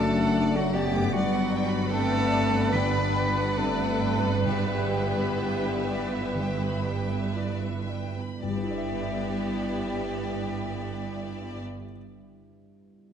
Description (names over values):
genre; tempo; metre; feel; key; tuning
cinematic; 56-80 BPM; 4/4; rubato; G major; A4 = 445 Hz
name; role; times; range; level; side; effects
clear cello; melody; 0.0-11.6 s; F#4 to B4; -36 LUFS; right 2 dB; none
rich symphonic violin section; melody; 0.0-11.6 s; D5 to E5; -40 LUFS; left 2 dB; none
clear symphonic violin section; second line; 0.0-11.6 s; D5 to D6; -39 LUFS; left 2 dB; none
mellow silver concert flute; second line; 0.0-11.6 s; F#5 to B5; -35 LUFS; equal; none
warm clarinet; second line; 0.0-11.6 s; A3 to E4; -34 LUFS; equal; none
clear symphonic viola section; accompaniment; 0.0-11.6 s; A3 to B4; -35 LUFS; right 1 dB; none
felt-muted upright piano; accompaniment; 0.0-13.1 s; F#2 to E5; -34 LUFS; left 1 dB; none
warm French horn section; sustained chords; 0.0-11.6 s; F#3 to G4; -32 LUFS; left 4 dB; none
concert harp; arpeggios; 0.0-12.3 s; F#2 to E5; -39 LUFS; left 9 dB; none
clear studio double bass section; bass; 0.0-11.6 s; F#1 to G1; -34 LUFS; right 5 dB; none
rich symphonic cello section; bass; 0.0-11.6 s; F#2 to G2; -32 LUFS; right 3 dB; none
timpani; percussion; 4.5-11.6 s; G2; -39 LUFS; right 1 dB; none
room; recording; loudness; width
wet scoring stage reverb, RT60 1.9 s; dark, warm production, nothing above 10.8 kHz; -24 LUFS; side -8 dB against mid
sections
0.0-8.4 A section; 8.4-12.7 B section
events
slowing down 0.0-8.4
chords
0.0 D/F#; 1.1 Gmaj7; 4.4 G6